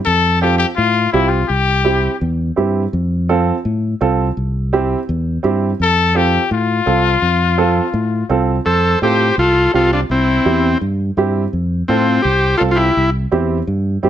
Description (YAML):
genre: latin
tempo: 167 BPM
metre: 4/4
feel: straight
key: F major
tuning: A4 = 441 Hz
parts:
  - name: bright trumpet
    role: second line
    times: 0.1-2.2, 5.8-13.1 s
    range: E4 to C5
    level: -18 LUFS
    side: left 6 dB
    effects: none
  - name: fingered electric bass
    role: bass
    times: 0.1-14.1 s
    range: C2 to A2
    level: -18 LUFS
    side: equal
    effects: none
  - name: warm upright piano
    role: accompaniment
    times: 0.4-14.1 s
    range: C4 to A4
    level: -18 LUFS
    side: right 5 dB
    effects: none
  - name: overdriven combo organ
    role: melody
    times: 8.7-13.1 s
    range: C4 to A4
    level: -14 LUFS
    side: left 1 dB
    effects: none
room: light reverb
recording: none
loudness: -13 LUFS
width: side -10 dB against mid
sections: 0.0-8.7 A section; 8.7-14.1 B section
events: trumpet solo 0.0-8.7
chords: 0.1 F; 1.5 C; 2.9 F; 4.4 C; 5.8 F; 10.1 C; 11.5 F; 13.0 C